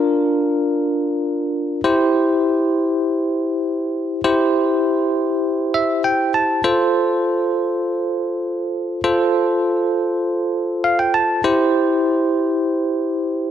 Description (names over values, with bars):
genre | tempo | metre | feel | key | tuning
pop | 100 BPM | 4/4 | straight | unclear | A4 = 438 Hz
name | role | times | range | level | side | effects
bell-like tine electric piano | solo | 0.0-13.5 s | D4 to A5 | -16 LUFS | equal | auto-pan
room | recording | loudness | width
light reverb | none | -16 LUFS | side -10 dB against mid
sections
0.0-1.8 A section; 1.8-13.5 A section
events
tine electric piano fill 5.4-6.6, 10.5-11.4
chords
0.0 Bb; 1.8 C; 6.6 F; 11.4 C